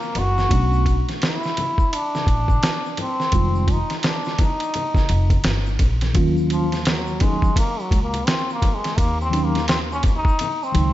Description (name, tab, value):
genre	hip hop, jazz-hop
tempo	85 BPM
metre	4/4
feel	swing 62% on 16ths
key	Eb dorian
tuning	A4 = 442 Hz
part	trombone with metal mute	melody	0.0-10.9 s	F3 to Gb4	-24 LUFS	left 1 dB	tape echo
part	tube shaker and congas	percussion	0.0-10.9 s	none	-35 LUFS	left 3 dB	none
part	upright bass	bass	0.2-10.9 s	F1 to Eb2	-22 LUFS	equal	none
part	lo-fi sampler-style drum kit	drums	0.2-10.9 s	hi-hat, kick drum, ride cymbal, snare drum	-21 LUFS	equal	none
part	mellow tine electric piano	accompaniment	0.5-10.9 s	Db3 to F4	-25 LUFS	equal	medium stereo tremolo
room	light reverb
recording	nothing above 7.8 kHz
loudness	-18 LUFS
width	side -14 dB against mid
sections	0.0-6.2 A section; 6.2-10.9 B section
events	trombone solo 6.2-10.9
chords	0.0 Ebm (rootless); 0.5 Bm9; 3.3 Fm9; 6.2 Ebm7